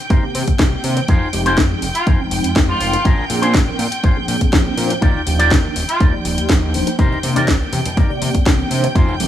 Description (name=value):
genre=filtered disco house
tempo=122 BPM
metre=4/4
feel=straight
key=C minor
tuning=A4 = 440 Hz
part: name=rich studio string section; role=sustained chords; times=0.0-9.3 s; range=G5 to G6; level=-26 LUFS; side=right 1 dB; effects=vintage 12-bit sampler grit, sidechain pumping
part: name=electric guitar with an envelope filter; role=riff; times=0.1-9.1 s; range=D4 to D5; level=-22 LUFS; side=left 1 dB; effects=vintage 12-bit sampler grit, sidechain pumping
part: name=fat analog bass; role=bass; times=0.1-9.3 s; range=Eb1 to C3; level=-21 LUFS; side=equal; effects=tube saturation, sidechain pumping
part: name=electronic kick drum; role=drums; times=0.1-9.1 s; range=none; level=-15 LUFS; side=equal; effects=overdrive
part: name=house drum kit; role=drums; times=0.1-9.3 s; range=hi-hat, snare drum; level=-21 LUFS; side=left 1 dB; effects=overdrive, sidechain pumping on hats
part: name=mellow tine electric piano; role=accompaniment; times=0.2-9.3 s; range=Eb3 to G5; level=-23 LUFS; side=right 1 dB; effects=medium stereo tremolo, phaser, sidechain pumping
part: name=clear horn section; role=melody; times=2.0-6.0 s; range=F4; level=-23 LUFS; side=equal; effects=sidechain pumping, analog delay
part: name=tube shaker and congas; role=percussion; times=7.0-9.2 s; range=none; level=-28 LUFS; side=left 2 dB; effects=sidechain pumping on perc
room=studio reverb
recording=dry, gritty hardware recording, small room ambience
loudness=-14 LUFS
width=side -11 dB against mid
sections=0.0-9.3 A section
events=none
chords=0.0 Cm7; 1.1 Fm7; 3.1 Bb7; 5.0 Ebmaj9; 7.0 Cm7